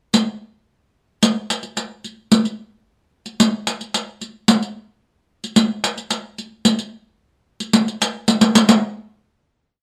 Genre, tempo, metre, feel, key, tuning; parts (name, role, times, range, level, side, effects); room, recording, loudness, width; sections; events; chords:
turkish; free time
riq; percussion; 0.1-8.8 s; -17 LUFS; equal
light reverb; close, detailed microphones, lossy compression artefacts; -19 LUFS; mono
0.1-8.8 free-time section; 8.8-9.8 final hit
drum fill 8.3-8.8